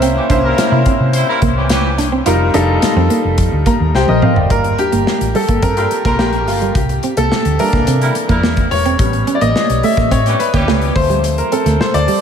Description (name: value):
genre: polished 1980s jazz-funk pop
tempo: 107 BPM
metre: 4/4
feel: straight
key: G minor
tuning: A4 = 439 Hz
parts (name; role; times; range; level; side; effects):
- clear baby grand piano; accompaniment; 0.0-12.2 s; E3 to Bb5; -16 LUFS; left 2 dB; wide subtle chorus, slapback echo
- semi-hollow electric guitar; riff; 0.0-12.2 s; G3 to F4; -20 LUFS; right 5 dB; wide subtle chorus
- hollow-body short-scale fingered electric bass; bass; 0.0-12.1 s; E1 to C3; -17 LUFS; equal; none
- modern studio drum kit; drums; 0.0-12.2 s; hi-hat, kick drum, snare drum, toms; -18 LUFS; equal; none
- warm horn section; second line; 0.2-1.9, 5.8-10.9 s; E3 to C5; -22 LUFS; right 1 dB; ping-pong delay, slapback echo
room: moderate lush hall reverb, RT60 2.4 s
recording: big arena sound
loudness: -12 LUFS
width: side -8 dB against mid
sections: 0.0-4.5 A section; 4.5-12.2 B section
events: grand piano fill 3.4-4.5; drum fill 3.9-4.5; grand piano solo 4.5-12.2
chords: 0.0 C7b9; 2.3 F9sus4; 4.5 Gm7; 6.8 C7; 9.0 A7; 11.0 Dm7